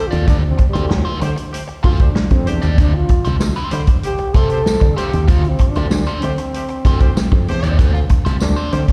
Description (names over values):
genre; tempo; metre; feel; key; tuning
funk; 96 BPM; 4/4; straight; D minor; A4 = 443 Hz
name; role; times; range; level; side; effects
growling trombone; melody; 0.0-8.9 s; G3 to A4; -25 LUFS; equal; slapback echo
warm horn section; second line; 0.0-8.8 s; A3 to C5; -30 LUFS; equal; slapback echo
crunchy overdriven guitar; accompaniment; 0.1-8.9 s; F4 to D5; -30 LUFS; equal; wah, slapback echo
slap bass with an envelope filter; bass; 0.1-8.9 s; C2 to D3; -19 LUFS; equal; none
vintage drum kit; drums; 0.1-8.9 s; hi-hat, kick drum, snare drum; -18 LUFS; equal; none
tambourine; percussion; 3.4-8.6 s; none; -35 LUFS; equal; none
room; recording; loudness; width
little or no reverb; live gig heard through the venue's PA, recital hall reverb; -16 LUFS; mono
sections
0.0-8.9 A section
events
trombone solo 0.0-8.9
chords
0.0 Dm11